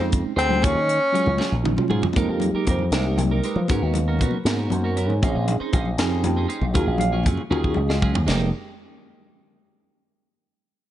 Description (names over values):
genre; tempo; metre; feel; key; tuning
electric jazz fusion; 79 BPM (dotted quarters); 6/8; straight; F phrygian; A4 = 440 Hz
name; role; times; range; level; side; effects
warm tenor saxophone; melody; 0.0-1.7 s; C4 to Db4; -22 LUFS; left 1 dB; none
mellow tine electric piano; accompaniment; 0.0-8.5 s; Gb3 to Ab5; -27 LUFS; right 2 dB; fast stereo tremolo, phaser
clean electric guitar; stabs; 0.0-8.5 s; Gb3 to C5; -30 LUFS; right 4 dB; lush chorus
slap bass with an envelope filter; bass; 0.0-8.5 s; F1 to F3; -23 LUFS; equal; none
tight funk drum kit; drums; 0.1-8.4 s; crash cymbal, hi-hat, kick drum, snare drum, toms; -25 LUFS; equal; none
congas; percussion; 0.4-8.5 s; none; -29 LUFS; left 5 dB; none
room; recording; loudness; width
light reverb, studio ambience; nothing above 10.9 kHz; -19 LUFS; side -12 dB against mid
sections
0.0-2.2 A section; 2.2-8.3 B section; 8.3-9.8 C section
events
drum fill 1.4-2.2, 7.5-8.3; tine electric piano fill 7.5-8.3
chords
0.0 Bbm11 (rootless); 0.6 Ebm11; 2.2 Fm11; 3.7 Abm11; 5.2 Bbm11; 6.7 Ebm11; 8.3 Fm11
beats
| 0.64 1.41 | 2.17 2.93 | 3.69 4.46 | 5.22 5.98 | 6.75 7.51 | 8.27